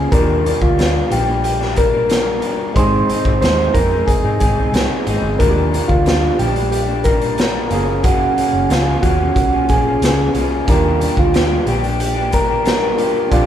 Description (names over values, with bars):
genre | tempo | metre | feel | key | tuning
indie pop, bedroom pop | 91 BPM | 4/4 | straight | Eb major | A4 = 441 Hz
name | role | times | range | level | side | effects
soft electric-piano-like synth keys | melody | 0.0-13.5 s | F4 to C5 | -18 LUFS | equal | chorus, phaser
barky tine electric piano | accompaniment | 0.0-13.5 s | Ab3 to F5 | -25 LUFS | right 4 dB | overdrive
electric guitar through a small old amp | accompaniment | 0.0-13.5 s | Gb2 to G4 | -21 LUFS | left 2 dB | vibrato effect
vintage muted fingered electric bass | bass | 0.0-13.5 s | Gb1 to Ab2 | -20 LUFS | equal | none
raw garage drum kit | drums | 0.1-13.5 s | hi-hat, kick drum, snare drum | -19 LUFS | equal | none
room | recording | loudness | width
wet recital hall reverb, RT60 1.5 s | recorded in a church or concert hall | -13 LUFS | side -10 dB against mid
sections
0.0-13.5 A section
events
none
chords
0.1 Ebmaj7; 2.8 Ab; 5.4 Ebmaj7; 7.7 Gbmaj7; 10.7 Ebmaj7